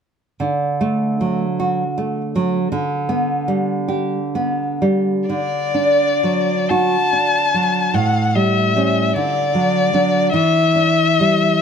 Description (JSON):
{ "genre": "romantic duo for violin and classical guitar", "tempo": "40-55 BPM (dotted quarters)", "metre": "6/8", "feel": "rubato", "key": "D major", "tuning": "A4 = 435 Hz", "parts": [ { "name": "nylon-string guitar", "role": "accompaniment", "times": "0.4-11.6 s", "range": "A2 to G4", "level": "-17 LUFS", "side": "right 2 dB", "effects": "none" }, { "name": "warm violin", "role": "melody", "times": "5.3-11.6 s", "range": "D5 to A5", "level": "-17 LUFS", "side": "left 5 dB", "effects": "none" } ], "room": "moderate plate reverb, RT60 2.4 s", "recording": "none", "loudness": "-15 LUFS", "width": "side -7 dB against mid", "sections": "0.4-5.3 A section; 5.3-11.6 B section", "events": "none", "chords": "0.4 D; 2.7 G/D; 5.3 D; 7.9 A7; 9.1 D; 10.3 Em7", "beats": "| 0.40 1.59 | 2.72 3.90 | 5.29 6.69 | 7.94 9.15 | 10.32" }